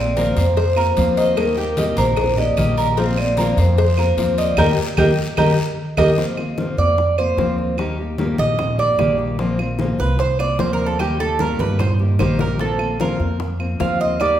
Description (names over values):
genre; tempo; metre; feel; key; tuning
latin, Cuban son and guajira; 150 BPM; 4/4; straight; Bb major; A4 = 439 Hz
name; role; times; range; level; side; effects
vibraphone with medium mallets; melody; 0.0-6.1 s; G4 to Eb5; -21 LUFS; left 1 dB; none
fingerpicked steel-string acoustic guitar; accompaniment; 0.0-14.4 s; Eb3 to G4; -23 LUFS; left 2 dB; none
Cuban tres; arpeggios; 0.0-14.4 s; C4 to F5; -21 LUFS; right 4 dB; none
upright bass; bass; 0.0-14.4 s; Bb1 to G2; -21 LUFS; equal; none
congas; percussion; 0.2-14.4 s; none; -25 LUFS; left 1 dB; none
cowbell and bongos; percussion; 0.2-14.4 s; none; -30 LUFS; left 5 dB; none
guiro; percussion; 0.2-6.1 s; none; -35 LUFS; left 3 dB; none
claves; percussion; 0.8-14.4 s; none; -33 LUFS; right 3 dB; none
room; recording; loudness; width
wet recital hall reverb, RT60 1.5 s; recorded in a church or concert hall; -16 LUFS; side -11 dB against mid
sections
0.0-6.2 A section; 6.2-14.4 B section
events
band accent 4.6-6.2; drum fill 5.6-6.2, 12.2-12.6; Cuban tres solo 6.2-14.4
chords
0.0 Bbsus2; 1.4 Eb; 3.0 Bbsus2; 4.6 Eb; 6.2 Bbsus2; 7.8 Eb; 9.4 Bbsus2; 11.0 Eb; 12.6 Bbsus2